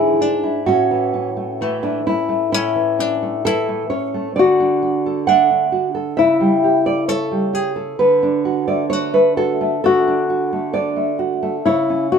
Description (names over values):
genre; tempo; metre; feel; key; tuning
romantic duo for nylon-string guitar and classical guitar; 66 BPM; 4/4; rubato; A major; A4 = 440 Hz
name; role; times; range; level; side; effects
flamenco guitar; melody; 0.0-12.2 s; A3 to A4; -19 LUFS; left 4 dB; none
nylon-string guitar; accompaniment; 0.0-12.2 s; G#2 to F#5; -17 LUFS; right 2 dB; none
room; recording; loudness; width
moderate studio reverb, RT60 0.5 s; minimal, uncompressed stereo recording; -15 LUFS; side -6 dB against mid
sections
0.0-12.2 A section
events
none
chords
0.0 E7/G#; 0.7 A; 4.4 D; 6.2 A7/C#; 8.0 D; 11.6 A/C# (rootless)